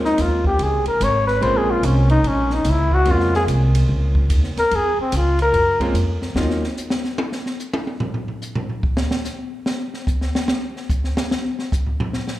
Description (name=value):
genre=jazz, small-group swing and bop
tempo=146 BPM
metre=4/4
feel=swing 65% on 8ths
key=Bb minor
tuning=A4 = 440 Hz
part: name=bright baby grand piano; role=accompaniment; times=0.0-6.6 s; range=Gb3 to F4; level=-25 LUFS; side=right 1 dB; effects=slapback echo
part: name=upright bass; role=bass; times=0.0-6.6 s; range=Ab1 to Gb2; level=-19 LUFS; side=equal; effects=none
part: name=open jazz drum kit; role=drums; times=0.0-12.4 s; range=hi-hat, kick drum, ride cymbal, snare drum, toms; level=-23 LUFS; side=equal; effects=none
part: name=warm flugelhorn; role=melody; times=0.1-5.8 s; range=C4 to Db5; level=-19 LUFS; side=left 1 dB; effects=slapback echo
room=light reverb, studio reverb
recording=live gig heard through the venue's PA, club reverb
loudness=-17 LUFS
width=side -15 dB against mid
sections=0.0-12.4 A section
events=flugelhorn solo 0.0-12.4; drum solo 6.4-12.4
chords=0.0 Bbm7; 6.4 Ebm7; 9.7 N.C.